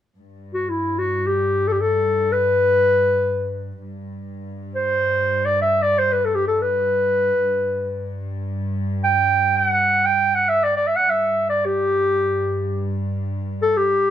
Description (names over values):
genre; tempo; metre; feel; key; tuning
arabic; free time; none; none; G maqam ajam; A4 = 440 Hz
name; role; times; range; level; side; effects
warm chamber cello section; drone; 0.2-14.1 s; G2; -28 LUFS; equal; none
warm clarinet; melody; 0.5-14.1 s; E4 to G5; -17 LUFS; equal; none
room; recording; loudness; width
light reverb; close, detailed microphones; -18 LUFS; side -10 dB against mid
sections
0.2-14.1 A section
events
none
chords
none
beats
free time